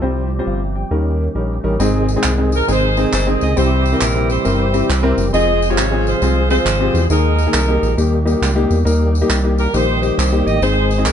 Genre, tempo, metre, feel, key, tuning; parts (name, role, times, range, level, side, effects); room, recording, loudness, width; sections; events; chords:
uptempo gospel; 136 BPM; 4/4; swing 65% on 8ths; A4 = 438 Hz
warm concert grand piano; accompaniment; 0.0-11.1 s; Ab2 to G5; -20 LUFS; left 3 dB
percussive tonewheel organ; sustained chords; 0.0-11.1 s; C3 to Ab4; -24 LUFS; right 4 dB; slow rotary speaker, overdrive, chorus vibrato
round analog bass; bass; 0.0-11.1 s; F1 to Fb2; -17 LUFS; equal
tambourine and handclaps; percussion; 1.8-11.1 s; -25 LUFS; right 2 dB
edgy saxophone section; melody; 2.6-11.1 s; Eb4 to Eb5; -19 LUFS; equal
light reverb; dark, warm production, nothing above 10.4 kHz; -14 LUFS; side -8 dB against mid
0.0-1.8 A section; 1.8-11.1 B section
0.0 Csus4; 0.9 Eb7; 1.8 Ab; 3.6 C; 5.3 Fm; 7.1 Ebsus4; 8.0 Eb